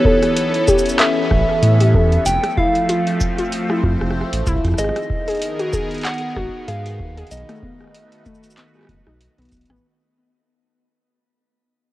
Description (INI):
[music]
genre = IDM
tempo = 95 BPM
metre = 4/4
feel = swing 56% on 16ths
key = unclear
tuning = A4 = 440 Hz
[part]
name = soft struck synth lead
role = melody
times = 0.0-9.5 s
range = C#5 to G5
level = -22 LUFS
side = equal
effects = chorus, ping-pong delay, shimmer reverb
[part]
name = phased analog pad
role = sustained chords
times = 0.0-9.8 s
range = D#3 to C5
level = -23 LUFS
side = equal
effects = phaser, chorus, shimmer reverb
[part]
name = warbly dusty pluck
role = arpeggios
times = 0.0-9.8 s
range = A3 to A4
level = -22 LUFS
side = left 2 dB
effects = chorus, ping-pong delay, shimmer reverb
[part]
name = electronic kick drum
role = drums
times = 0.0-9.7 s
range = none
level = -21 LUFS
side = equal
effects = small room reverb
[part]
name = booming analog drum machine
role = drums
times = 0.2-9.8 s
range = cabasa, handclaps, hi-hat, rim click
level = -23 LUFS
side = equal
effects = small room reverb
[part]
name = round analog bass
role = bass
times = 1.3-9.8 s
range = F1 to A2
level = -18 LUFS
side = equal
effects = none
[sound]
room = light reverb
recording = worn, warbling old tape, cassette tape, warbly pitch drift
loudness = -15 LUFS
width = side -16 dB against mid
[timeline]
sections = 0.0-9.8 A section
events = fade-out 0.0-9.8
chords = 0.0 Aadd9; 2.3 F; 4.8 G#madd9; 7.3 B7